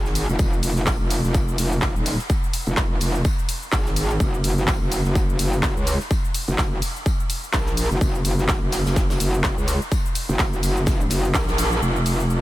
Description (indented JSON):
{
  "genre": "bass house",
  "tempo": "126 BPM",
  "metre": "4/4",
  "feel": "swing 57% on 16ths",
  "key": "F phrygian",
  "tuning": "A4 = 440 Hz",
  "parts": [
    { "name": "metallic wobble bass", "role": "bass", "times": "0.0-12.4 s", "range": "Eb1 to Db2", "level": "-22 LUFS", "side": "equal", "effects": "distortion, chorus, sidechain pumping" },
    { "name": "big-room dance drum kit", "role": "drums", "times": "0.1-12.4 s", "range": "cabasa, handclaps, hi-hat", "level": "-26 LUFS", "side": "equal", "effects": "none" },
    { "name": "modern studio drum kit", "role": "drums", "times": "0.1-11.7 s", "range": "hi-hat, snare drum, tambourine", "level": "-36 LUFS", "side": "equal", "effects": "sidechain pumping on hats, high-pass filter on hats, high-pass filter on snare, sidechain pumping on perc, high-pass filter on perc, high-pass filter on room" },
    { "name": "electronic kick drum", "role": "drums", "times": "0.4-11.5 s", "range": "none", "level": "-23 LUFS", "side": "equal", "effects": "none" }
  ],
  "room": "light reverb",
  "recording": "none",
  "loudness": "-19 LUFS",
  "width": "side -16 dB against mid",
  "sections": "0.0-11.8 A section",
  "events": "band accent 11.3",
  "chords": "none"
}